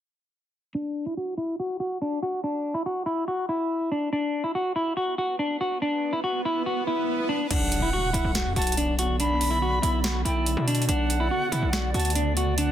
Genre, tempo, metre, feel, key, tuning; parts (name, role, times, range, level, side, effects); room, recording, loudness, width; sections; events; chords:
hip hop, trap; 142 BPM; 4/4; half-time; B minor; A4 = 440 Hz
semi-hollow electric guitar; melody; 0.7-12.7 s; D4 to F#4; -26 LUFS; equal; low-pass filter
swell and impact; sound effects; 5.3-9.2 s; -32 LUFS; equal
silver concert flute; second line; 7.5-12.7 s; F#5 to B5; -31 LUFS; right 1 dB; ping-pong delay
granular cloud pad; sustained chords; 8.3-12.7 s; D3 to D5; -32 LUFS; equal; built-in reverb
distorted 808-style bass; bass; 7.5-12.7 s; A1 to B2; -26 LUFS; equal; distortion
booming analog drum machine; drums; 7.5-12.7 s; crash cymbal, hi-hat, snare drum; -30 LUFS; right 1 dB; overdrive
light reverb; dense, heavily limited modern master; -24 LUFS; side -11 dB against mid
0.7-7.5 A section; 7.5-12.7 B section
filter sweep on clean electric guitar 0.7-7.5; swell 5.3-7.5; impact 7.5-9.2
0.7 N.C.; 7.5 Bm